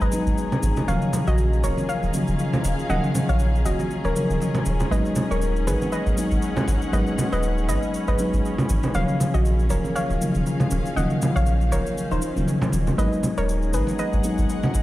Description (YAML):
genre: deep house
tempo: 119 BPM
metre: 4/4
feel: swing 56% on 16ths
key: G# minor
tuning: A4 = 439 Hz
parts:
  - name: soft round pluck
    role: melody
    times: 0.0-14.1 s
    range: D#4 to F#5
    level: -29 LUFS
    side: equal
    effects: chorus, tape echo
  - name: warbly tape-like pad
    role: sustained chords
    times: 0.0-14.8 s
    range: C#4 to B5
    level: -35 LUFS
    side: right 1 dB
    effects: chorus, built-in reverb
  - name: mellow FM electric piano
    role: stabs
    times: 0.0-14.8 s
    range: C#3 to D#4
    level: -25 LUFS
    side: left 1 dB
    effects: chorus, tape echo
  - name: warm sub bass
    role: bass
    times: 0.0-14.8 s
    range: D#1 to A#1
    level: -23 LUFS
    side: equal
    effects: none
  - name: cabasa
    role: percussion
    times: 0.0-14.8 s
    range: none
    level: -38 LUFS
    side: left 1 dB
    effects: none
  - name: warm studio string section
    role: texture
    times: 0.0-14.8 s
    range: C#4 to F#5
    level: -33 LUFS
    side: left 1 dB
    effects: none
  - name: congas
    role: percussion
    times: 0.1-14.8 s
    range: none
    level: -26 LUFS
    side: right 1 dB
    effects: none
room: light reverb, small room ambience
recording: played on a big sound system in a bare room, stone room reverb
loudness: -20 LUFS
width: side -16 dB against mid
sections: 0.0-14.8 A section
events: none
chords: 0.0 G#m9; 0.9 D#m9; 4.9 G#m9; 8.9 D#m9; 13.0 G#m9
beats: 0.38 | 0.88 1.38 1.89 2.39 | 2.90 3.40 3.90 4.41 | 4.91 5.42 5.92 6.43 | 6.93 7.43 7.94 8.44 | 8.95 9.45 9.96 10.46 | 10.96 11.47 11.97 12.48 | 12.98 13.48 13.99 14.49